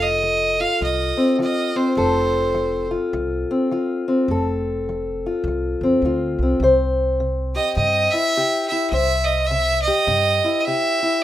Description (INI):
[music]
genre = acoustic country blues, solo or duo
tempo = 104 BPM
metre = 4/4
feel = swing 62% on 8ths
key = F major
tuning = A4 = 440 Hz
[part]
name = clear fiddle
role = melody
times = 0.0-2.9, 7.6-11.2 s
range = C5 to F5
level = -19 LUFS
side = right 2 dB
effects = none
[part]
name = fingerpicked acoustic archtop guitar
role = accompaniment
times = 0.0-11.2 s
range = C3 to C5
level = -21 LUFS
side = left 2 dB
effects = none
[part]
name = upright bass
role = bass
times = 0.0-10.4 s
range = F1 to G2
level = -25 LUFS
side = equal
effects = none
[sound]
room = wet small room reverb, RT60 0.5 s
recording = rough home demo mix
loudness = -18 LUFS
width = side -13 dB against mid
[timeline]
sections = 0.0-11.2 A section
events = none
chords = 0.0 F; 6.6 C